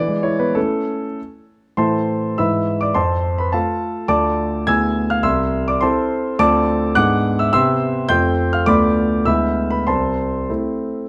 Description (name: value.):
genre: classical-period piano sonatina.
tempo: 96-106 BPM.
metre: 2/4.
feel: rubato.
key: A minor.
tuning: A4 = 439 Hz.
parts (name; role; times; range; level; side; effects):
clear concert grand piano; solo; 0.0-11.1 s; C2 to G#6; -18 LUFS; equal; none.
room: moderate recital hall reverb, RT60 1.3 s.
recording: close, detailed microphones.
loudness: -18 LUFS.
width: mono.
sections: 0.0-1.8 A section; 1.8-11.1 B section.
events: none.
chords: 0.0 E; 0.6 A; 1.8 Am; 2.4 E/G#; 3.0 F; 4.1 Dm; 4.7 E7/D; 5.2 Am/C; 6.4 Dm7; 7.0 G#dim; 7.5 Cmaj7; 8.1 F; 8.7 Bm7b5/D; 9.3 E7/D; 9.9 Am/C.